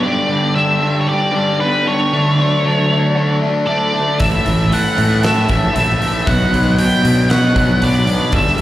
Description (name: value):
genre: quiet-loud alternative rock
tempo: 116 BPM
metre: 4/4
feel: straight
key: unclear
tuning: A4 = 440 Hz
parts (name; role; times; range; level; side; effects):
- octave-fuzz lead guitar; melody; 0.0-8.6 s; B4 to G5; -18 LUFS; right 1 dB; distortion, tape echo
- clean electric guitar; arpeggios; 0.0-8.6 s; G2 to A4; -20 LUFS; right 2 dB; tremolo
- raw garage guitar; riff; 0.0-8.6 s; G2 to D4; -18 LUFS; left 2 dB; overdrive, slapback echo
- fuzz fingered electric bass; bass; 4.2-8.4 s; G1 to B2; -17 LUFS; equal; overdrive
- huge arena drum kit; drums; 4.2-8.6 s; hi-hat, kick drum, snare drum; -21 LUFS; equal; none
room: small room ambience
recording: live gig heard through the venue's PA, recital hall reverb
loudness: -12 LUFS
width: side -14 dB against mid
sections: 0.0-8.6 A section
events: none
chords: 0.1 G; 2.1 D; 4.2 A; 6.3 Bm